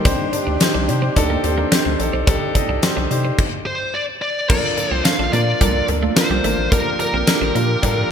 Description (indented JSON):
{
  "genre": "1980s-style pop",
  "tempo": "108 BPM",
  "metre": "4/4",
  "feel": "straight",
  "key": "unclear",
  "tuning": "A4 = 439 Hz",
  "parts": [
    { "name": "warm concert grand piano", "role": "accompaniment", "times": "0.0-8.1 s", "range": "D4 to Eb5", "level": "-22 LUFS", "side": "left 2 dB", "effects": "none" },
    { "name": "brassy analog pad", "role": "sustained chords", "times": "0.0-8.1 s", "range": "Eb3 to G4", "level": "-29 LUFS", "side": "right 2 dB", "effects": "chorus" },
    { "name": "twelve-string electric guitar", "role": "riff", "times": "0.1-7.9 s", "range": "G3 to D4", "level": "-27 LUFS", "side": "right 6 dB", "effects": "lush chorus" },
    { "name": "rubbery square bass", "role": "bass", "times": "0.1-8.0 s", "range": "Ab1 to C3", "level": "-22 LUFS", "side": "equal", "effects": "none" },
    { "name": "huge arena drum kit", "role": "drums", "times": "0.1-8.0 s", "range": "crash cymbal, hi-hat, kick drum, snare drum, tambourine", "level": "-19 LUFS", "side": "equal", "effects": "gated reverb" },
    { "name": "cowbell", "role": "percussion", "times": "0.1-8.0 s", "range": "none", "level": "-36 LUFS", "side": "right 8 dB", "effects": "none" },
    { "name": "high-gain lead guitar", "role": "melody", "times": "3.7-8.1 s", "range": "Bb4 to F5", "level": "-22 LUFS", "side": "equal", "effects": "distortion, ping-pong delay" }
  ],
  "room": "moderate plate reverb, RT60 2.3 s",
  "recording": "bright 1980s-style digital production",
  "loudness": "-16 LUFS",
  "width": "side -7 dB against mid",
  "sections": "0.0-4.5 A section; 4.5-8.1 B section",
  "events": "stop 3.4-4.5",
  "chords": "0.1 Cmadd9; 4.5 Bbmaj7",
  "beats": "| 0.05 0.61 1.16 1.72 | 2.27 2.83 3.39 3.94 | 4.50 5.05 5.61 6.16 | 6.72 7.28 7.83"
}